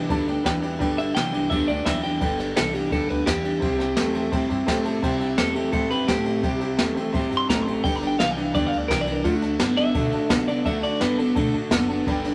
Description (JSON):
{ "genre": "rockabilly", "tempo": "170 BPM", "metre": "4/4", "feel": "straight", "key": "G major", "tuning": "A4 = 441 Hz", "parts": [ { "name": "clear upright piano", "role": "accompaniment", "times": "0.0-12.3 s", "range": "A4 to A5", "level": "-36 LUFS", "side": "equal", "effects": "none" }, { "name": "picked steel-string acoustic guitar", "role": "accompaniment", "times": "0.0-12.3 s", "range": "G2 to B4", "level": "-33 LUFS", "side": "equal", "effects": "none" }, { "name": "electric guitar through a small old amp", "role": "riff", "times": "0.0-12.3 s", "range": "G2 to B3", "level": "-28 LUFS", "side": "equal", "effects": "none" }, { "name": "upright bass", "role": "bass", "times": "0.0-12.3 s", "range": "F#1 to C3", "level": "-35 LUFS", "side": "equal", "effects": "none" }, { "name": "jazz brush drum kit", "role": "drums", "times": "0.1-12.3 s", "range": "kick drum, ride cymbal, snare drum", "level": "-29 LUFS", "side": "equal", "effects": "none" }, { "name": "clean electric guitar", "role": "melody", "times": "1.0-11.5 s", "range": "D4 to C6", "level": "-29 LUFS", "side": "equal", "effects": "none" } ], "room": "moderate club reverb, RT60 0.6 s", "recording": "none", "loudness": "-23 LUFS", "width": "mono", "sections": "0.0-12.3 A section", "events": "none", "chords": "0.0 G; 3.6 C; 7.8 G; 9.3 D" }